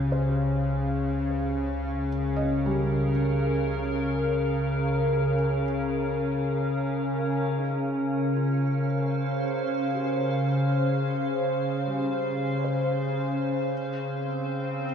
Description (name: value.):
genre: ambient.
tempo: free time.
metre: none.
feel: none.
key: unclear.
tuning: A4 = 438 Hz.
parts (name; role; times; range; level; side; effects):
glassy FM pad; sustained chords; 0.0-14.9 s; Db3 to F5; -25 LUFS; left 1 dB; ensemble chorus, built-in reverb.
felt-muted upright piano; arpeggios; 0.0-14.9 s; G3 to Eb5; -38 LUFS; right 3 dB; none.
deep rumbling drone; bass; 0.0-7.4 s; Db2; -35 LUFS; right 1 dB; built-in reverb.
bowed-like drone; drone; 0.0-14.9 s; Db3; -33 LUFS; equal; built-in reverb.
room: wet concert hall reverb, RT60 2.2 s.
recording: none.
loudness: -24 LUFS.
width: side -7 dB against mid.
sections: 0.0-7.4 A section; 7.4-14.9 B section.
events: filter sweep on ambient pad 0.0-7.4.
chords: 0.0 F5/Db; 13.7 Dbmaj7.